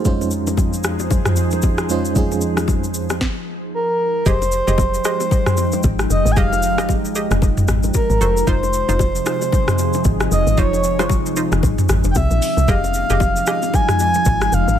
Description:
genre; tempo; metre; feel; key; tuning
amapiano; 114 BPM; 4/4; swing 58% on 16ths; F minor; A4 = 440 Hz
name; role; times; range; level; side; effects
FM electric piano with tremolo; accompaniment; 0.0-3.2 s; F2 to C5; -21 LUFS; right 4 dB; none
deep dark ambient pad; sustained chords; 0.0-14.8 s; C3 to G5; -23 LUFS; equal; chorus, built-in reverb
smooth R&B drum kit; drums; 0.1-14.8 s; hi-hat, kick drum, rim click, shaker, snare drum, toms; -20 LUFS; equal; none
congas and bongos; percussion; 0.1-14.4 s; none; -27 LUFS; left 7 dB; none
breathy flute-like synth lead; melody; 3.7-14.8 s; Bb4 to Ab5; -20 LUFS; equal; chorus, ping-pong delay
hollow square pluck; stabs; 4.3-13.7 s; Eb4 to Eb5; -27 LUFS; right 4 dB; chorus, ping-pong delay
deep log drum bass; bass; 4.3-14.8 s; F1 to C2; -19 LUFS; equal; none
room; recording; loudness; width
little or no reverb; none; -15 LUFS; side -10 dB against mid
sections
0.0-4.3 A section; 4.3-14.8 B section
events
stop 3.2-4.3; drop 4.3-14.8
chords
0.1 Dbmaj9/F; 3.7 N.C.; 4.3 Fm9; 7.9 Ab7b9; 8.5 Dbmaj9/F (rootless); 12.2 C7b9; 12.7 Fm9

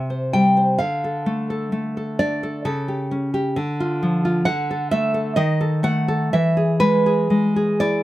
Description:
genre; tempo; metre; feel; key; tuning
romantic piece for solo classical guitar; 65 BPM; 2/4; uneven beats, rubato; unclear; A4 = 440 Hz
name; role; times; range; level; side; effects
nylon-string guitar; solo; 0.0-8.0 s; C3 to G5; -18 LUFS; equal; none
room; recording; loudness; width
light reverb; close, detailed microphones; -18 LUFS; side -15 dB against mid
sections
0.0-8.0 A section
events
none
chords
0.0 C; 0.8 Dm; 2.7 A7/C#; 3.6 Dm; 4.5 Dadd9; 5.4 D#dim; 6.3 E

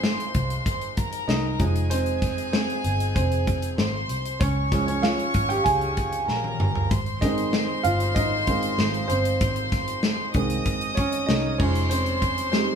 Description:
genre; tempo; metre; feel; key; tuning
piano-driven pop; 96 BPM; 4/4; straight; Ab major; A4 = 439 Hz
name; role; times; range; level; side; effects
warm studio violin section; second line; 0.0-12.8 s; Ab4 to Eb6; -28 LUFS; left 1 dB; none
clear upright piano; accompaniment; 0.0-12.8 s; Eb3 to Ab5; -26 LUFS; right 3 dB; none
vintage muted picked electric bass; bass; 0.0-12.7 s; F1 to Db2; -28 LUFS; left 1 dB; none
modern studio drum kit; drums; 0.0-12.7 s; crash cymbal, hi-hat, kick drum, snare drum, toms; -26 LUFS; left 1 dB; none
room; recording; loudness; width
wet studio reverb, RT60 0.6 s; band playing live in one room; -21 LUFS; side -7 dB against mid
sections
0.0-12.8 A section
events
upright piano solo 0.0-12.8; drum fill 6.3-6.9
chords
0.0 Ab; 1.6 Fm7; 4.4 Db; 6.9 Ab; 11.6 Fm7

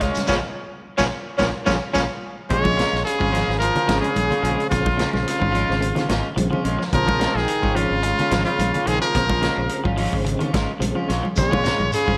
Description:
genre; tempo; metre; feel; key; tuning
afrobeat; 108 BPM; 4/4; swing 53% on 16ths; Bb minor; A4 = 445 Hz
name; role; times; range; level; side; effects
breathy tenor saxophone; melody; 0.0-2.0 s; Db4; -27 LUFS; equal; slapback echo
electric guitar at the edge of break-up; arpeggios; 0.0-11.8 s; Bb2 to Ab3; -32 LUFS; equal; none
electric guitar at the edge of break-up; stabs; 0.0-12.2 s; Ab3 to F4; -31 LUFS; equal; lush chorus
fingered electric bass; bass; 0.0-12.2 s; Ab1 to Bb1; -29 LUFS; equal; none
vintage drum kit; drums; 0.0-12.2 s; hi-hat, kick drum, snare drum; -30 LUFS; equal; none
congas; percussion; 0.0-12.2 s; none; -31 LUFS; equal; none
shekere; percussion; 0.0-2.1, 11.4-12.1 s; none; -35 LUFS; equal; none
tonewheel organ; accompaniment; 0.3-12.2 s; C3 to C4; -33 LUFS; equal; none
bright trumpet; melody; 2.5-12.2 s; F4 to Db5; -25 LUFS; equal; none
clear trombone; second line; 2.5-12.2 s; Db3 to Ab3; -30 LUFS; equal; none
room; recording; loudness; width
moderate concert hall reverb, RT60 2.2 s; none; -21 LUFS; mono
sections
0.0-2.5 A section; 2.5-12.2 B section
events
tenor saxophone solo 0.0-2.5; band accent 0.3-2.5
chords
0.0 Bbm7

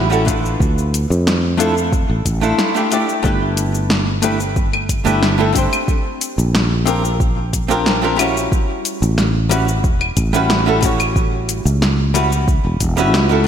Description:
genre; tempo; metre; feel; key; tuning
sunset chillout; 91 BPM; 4/4; straight; G lydian; A4 = 440 Hz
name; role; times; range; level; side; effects
archtop guitar, miked and amplified; accompaniment; 0.0-13.5 s; G3 to D5; -18 LUFS; equal; auto-pan, digital delay, slapback echo
sustaining fretless electric bass; bass; 0.0-13.5 s; E1 to F2; -18 LUFS; equal; none
deep house drum kit; drums; 0.1-13.3 s; cabasa, claves, hi-hat, snare drum; -21 LUFS; equal; overdrive
electronic kick drum; drums; 0.3-12.9 s; none; -18 LUFS; equal; overdrive
room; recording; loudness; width
moderate lush hall reverb, RT60 2.0 s; big arena sound; -14 LUFS; side -9 dB against mid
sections
0.0-3.2 A section; 3.2-13.5 B section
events
none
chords
0.0 A13; 0.6 Dmadd9; 3.2 G69; 5.9 Bb6; 8.5 A13

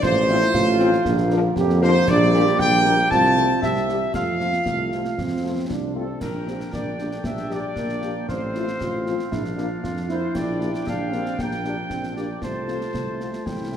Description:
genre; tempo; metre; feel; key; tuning
military-style march for wind band; 116 BPM; 2/4; straight; F major; A4 = 440 Hz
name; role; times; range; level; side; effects
mellow trumpet section; melody; 0.0-13.8 s; A4 to A5; -26 LUFS; left 1 dB; none
clear woodwind section; second line; 0.0-13.8 s; C4 to A5; -27 LUFS; left 1 dB; none
warm euphonium; second line; 0.0-5.9 s; D4 to G4; -25 LUFS; right 4 dB; none
warm trombone section; sustained chords; 0.0-13.8 s; D3 to F4; -30 LUFS; right 2 dB; none
mellow tuba; bass; 0.0-13.8 s; A1 to F2; -24 LUFS; right 1 dB; none
concert snare drum, clash cymbals and concert bass drum; drums; 0.0-13.8 s; none; -32 LUFS; left 1 dB; none
mellow French horn section; accompaniment; 0.3-13.8 s; F3 to Bb4; -31 LUFS; left 6 dB; none
room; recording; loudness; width
moderate concert hall reverb, RT60 2.3 s; none; -19 LUFS; side -9 dB against mid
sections
0.0-6.2 A section; 6.2-13.8 A section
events
none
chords
0.0 F/A; 1.1 Bb; 2.1 Gm/Bb; 3.1 F/C; 3.6 C; 4.1 F; 6.2 Gm/Bb; 8.3 F/A; 9.3 Bb; 10.4 Gm/Bb; 12.4 F/C

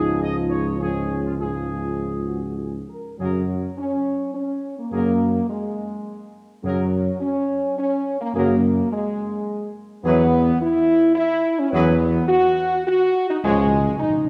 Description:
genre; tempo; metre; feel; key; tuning
classical; 105 BPM; 3/4; straight; F# major; A4 = 440 Hz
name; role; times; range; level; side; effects
dark trumpet section; melody; 0.0-13.6 s; E#4 to D#5; -34 LUFS; equal; none
mellow French horn section; sustained chords; 0.0-14.3 s; F#3 to A#4; -23 LUFS; equal; none
mellow trombone section; sustained chords; 0.0-13.6 s; G#2 to G#3; -29 LUFS; equal; none
warm tuba; bass; 0.0-13.9 s; C#2 to F#2; -27 LUFS; equal; none
timpani; percussion; 13.4-14.3 s; C#3; -32 LUFS; equal; none
room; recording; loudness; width
wet concert hall reverb, RT60 2.0 s; dark, warm production; -21 LUFS; mono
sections
0.0-3.2 A section; 3.2-14.3 A section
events
timpani fill 13.4-14.3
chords
0.0 C#; 3.2 F#add9; 10.0 Esus2; 13.4 C#

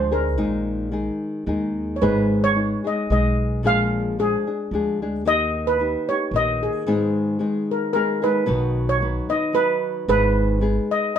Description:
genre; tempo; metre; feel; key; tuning
mexican folk, mariachi; 112 BPM; 3/4; swing 54% on 8ths; G# minor; A4 = 441 Hz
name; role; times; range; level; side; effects
steel pan; melody; 0.0-11.2 s; G#4 to E#5; -22 LUFS; right 1 dB; plate reverb
nylon-string guitar; accompaniment; 0.0-11.2 s; G#2 to B4; -23 LUFS; left 2 dB; none
upright bass; bass; 0.0-10.8 s; G#1 to D#2; -25 LUFS; right 1 dB; none
room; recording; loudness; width
moderate studio reverb, RT60 0.5 s; none; -19 LUFS; side -8 dB against mid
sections
0.0-8.5 A section; 8.5-11.2 B section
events
none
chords
0.4 D#sus4/A#; 2.0 G#m; 3.6 A#7; 5.2 D#; 6.9 G#m; 8.5 B; 10.1 G#m

